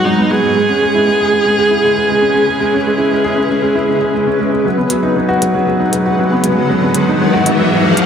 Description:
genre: piano and strings electronica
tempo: 117 BPM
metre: 4/4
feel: straight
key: G# minor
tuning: A4 = 440 Hz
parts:
  - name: clear viola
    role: melody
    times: 0.0-4.1 s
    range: D#4 to G#4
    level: -14 LUFS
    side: right 1 dB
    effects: none
  - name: granular cloud pad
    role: sustained chords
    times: 0.0-8.1 s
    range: G#3 to F#5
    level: -18 LUFS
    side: left 1 dB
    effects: built-in reverb
  - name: warm upright piano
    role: riff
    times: 0.0-8.1 s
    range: F#3 to G#4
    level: -14 LUFS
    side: right 1 dB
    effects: tape echo
  - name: riser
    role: sound effects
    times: 5.7-8.1 s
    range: none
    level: -18 LUFS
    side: left 2 dB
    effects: none
  - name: electronic hi-hat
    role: drums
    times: 4.9-8.1 s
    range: none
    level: -18 LUFS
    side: equal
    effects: overdrive
room: moderate scoring stage reverb, RT60 1.8 s, small room ambience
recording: none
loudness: -11 LUFS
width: side -7 dB against mid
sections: 0.0-4.7 A section; 4.7-8.1 B section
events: build-up 4.7-8.1; riser 5.7-8.1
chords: 0.0 G#m7; 0.5 C#m7; 4.7 G#m7

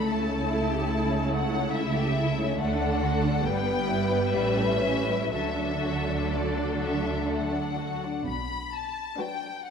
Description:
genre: classical, slow romantic movement for string orchestra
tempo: 59-73 BPM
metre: 3/4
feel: rubato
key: D major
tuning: A4 = 440 Hz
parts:
  - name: warm symphonic violin section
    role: melody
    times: 0.0-9.7 s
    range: D5 to B5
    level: -32 LUFS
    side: left 7 dB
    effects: none
  - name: warm studio violin section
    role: second line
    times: 0.0-9.7 s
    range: G3 to B4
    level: -31 LUFS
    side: left 3 dB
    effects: none
  - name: warm studio viola section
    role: accompaniment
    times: 0.0-9.7 s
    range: F#3 to E4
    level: -30 LUFS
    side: right 2 dB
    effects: none
  - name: rich studio double bass section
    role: bass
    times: 0.0-9.0 s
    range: G1 to D2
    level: -32 LUFS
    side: right 3 dB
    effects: none
  - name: warm studio cello section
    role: bass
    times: 0.0-9.0 s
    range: G2 to D3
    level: -33 LUFS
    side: right 3 dB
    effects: none
room: wet concert hall reverb, RT60 2.0 s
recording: none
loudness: -25 LUFS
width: side -6 dB against mid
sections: 0.0-8.3 A section; 8.3-9.7 B section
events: none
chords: 0.1 A/C#; 2.6 D; 3.5 Em/G; 4.3 A7; 5.3 D; 8.3 Bm

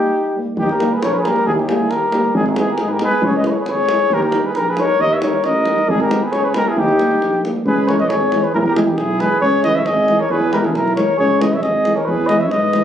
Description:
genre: balkan folk, Balkan brass band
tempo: 136 BPM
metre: 2/4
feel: straight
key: Eb phrygian dominant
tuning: A4 = 442 Hz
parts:
  - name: dark trumpet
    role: melody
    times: 0.0-12.8 s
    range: G4 to Fb5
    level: -17 LUFS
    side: left 1 dB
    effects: none
  - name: mellow flugelhorn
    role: second line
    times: 0.0-12.8 s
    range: Eb4 to Db5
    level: -23 LUFS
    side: right 2 dB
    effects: none
  - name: mellow euphonium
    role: accompaniment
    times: 0.4-12.8 s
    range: Ab3 to Fb4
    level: -23 LUFS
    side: left 4 dB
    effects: none
  - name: warm euphonium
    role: accompaniment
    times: 0.4-12.8 s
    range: E3 to Ab3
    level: -24 LUFS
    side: right 4 dB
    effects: none
  - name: mellow tuba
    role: bass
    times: 0.6-12.7 s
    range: Ab1 to Ab2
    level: -20 LUFS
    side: equal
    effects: none
  - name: davul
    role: percussion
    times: 0.6-12.8 s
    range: none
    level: -25 LUFS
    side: equal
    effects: none
room: moderate studio reverb, RT60 0.6 s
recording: recorded on a phone in the room, club reverb, compression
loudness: -14 LUFS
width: side -9 dB against mid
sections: 0.6-7.6 A section; 7.6-12.8 B section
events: break 0.0-0.6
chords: 0.0 Eb; 2.3 Abm; 3.2 Dbm; 4.1 Eb; 5.9 Abm; 6.8 Eb; 7.6 Dbm; 8.5 E; 9.4 Dbm; 10.3 E; 11.2 Dbm; 12.1 E

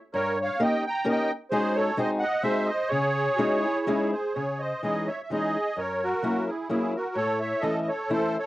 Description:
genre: musette waltz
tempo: 128 BPM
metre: 3/4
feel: swing 54% on 8ths, rubato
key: C# harmonic minor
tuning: A4 = 440 Hz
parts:
  - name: musette accordion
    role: melody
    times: 0.1-8.5 s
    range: E4 to A#5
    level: -26 LUFS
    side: right 1 dB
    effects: cassette tape
  - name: fingerpicked old ladder-braced acoustic guitar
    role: accompaniment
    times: 0.1-8.4 s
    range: F#2 to A#4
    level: -28 LUFS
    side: left 2 dB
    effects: none
  - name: dark clarinet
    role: second line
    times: 3.4-4.4 s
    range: E4 to G#4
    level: -30 LUFS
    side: right 1 dB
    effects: none
room: moderate studio reverb, RT60 0.5 s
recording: home recording on cassette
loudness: -24 LUFS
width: side -16 dB against mid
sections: 0.0-4.4 A section; 4.4-8.5 B section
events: none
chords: 0.1 D#7/G; 1.5 G#7sus4; 2.0 G#7; 2.9 C#madd9; 5.8 F#7; 7.2 A

